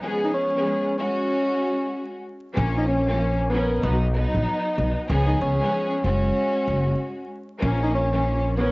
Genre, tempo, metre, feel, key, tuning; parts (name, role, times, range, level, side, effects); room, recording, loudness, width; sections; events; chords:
hip hop, boom-bap hip-hop; 95 BPM; 4/4; swing 62% on 16ths; Bb phrygian; A4 = 437 Hz
warm studio string section; accompaniment; 0.0-8.7 s; F3 to Bb4; -26 LUFS; equal; cassette tape, high-pass filter, low-pass filter
breathy tenor saxophone; melody; 0.2-8.7 s; Cb4 to Eb4; -25 LUFS; equal; high-pass filter, low-pass filter
upright bass; bass; 2.6-8.7 s; Gb1 to Db2; -23 LUFS; equal
light reverb, small room ambience; home recording on cassette, vinyl crackle, nothing above 7.7 kHz; -21 LUFS; side -25 dB against mid
0.0-2.6 A section; 2.6-8.7 B section
break 0.0-2.6
0.0 Db7; 1.0 Gbsus2; 2.6 Bbm; 3.8 B; 5.1 Db7; 6.0 Gbsus2; 7.6 Bbm